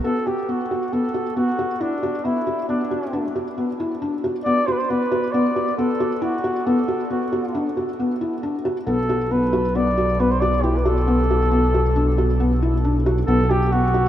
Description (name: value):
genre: contemporary instrumental, chamber music in an uneven meter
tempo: 136 BPM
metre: 5/4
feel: straight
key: B minor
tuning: A4 = 440 Hz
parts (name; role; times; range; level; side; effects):
- mellow flugelhorn; melody; 0.0-14.1 s; D4 to D5; -24 LUFS; equal; none
- felt-muted upright piano; arpeggios; 0.0-14.1 s; B3 to F#4; -22 LUFS; left 1 dB; none
- smooth synth bass; bass; 8.9-14.1 s; B1; -20 LUFS; equal; none
room: wet huge ambient reverb, RT60 7.2 s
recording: in a vast, echoing space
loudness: -18 LUFS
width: side -11 dB against mid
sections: 0.0-14.1 A section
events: none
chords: 0.0 B7(no3)